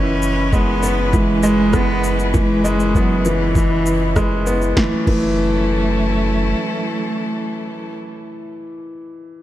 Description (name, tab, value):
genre	piano and strings electronica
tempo	99 BPM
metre	4/4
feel	straight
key	F# minor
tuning	A4 = 440 Hz
part	warm cello	melody	0.0-8.0 s	E3 to C#4	-21 LUFS	right 1 dB	none
part	clear string quartet	sustained chords	0.0-8.0 s	F#3 to B4	-26 LUFS	left 1 dB	sidechain pumping
part	bright upright piano	riff	0.0-9.4 s	E3 to B3	-21 LUFS	equal	ping-pong delay
part	warm sub bass	bass	0.0-6.5 s	F#1	-22 LUFS	equal	sidechain pumping
part	deep house drum kit	drums	0.2-5.3 s	crash cymbal, rim click, shaker, snare drum	-26 LUFS	equal	overdrive
part	electronic kick drum	drums	0.5-5.3 s	none	-18 LUFS	equal	none
room	light reverb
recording	dark, warm production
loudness	-15 LUFS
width	side -13 dB against mid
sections	0.0-4.8 A section; 4.8-7.2 B section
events	drop 0.0-4.8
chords	0.0 C#m7/F#; 4.8 F#m7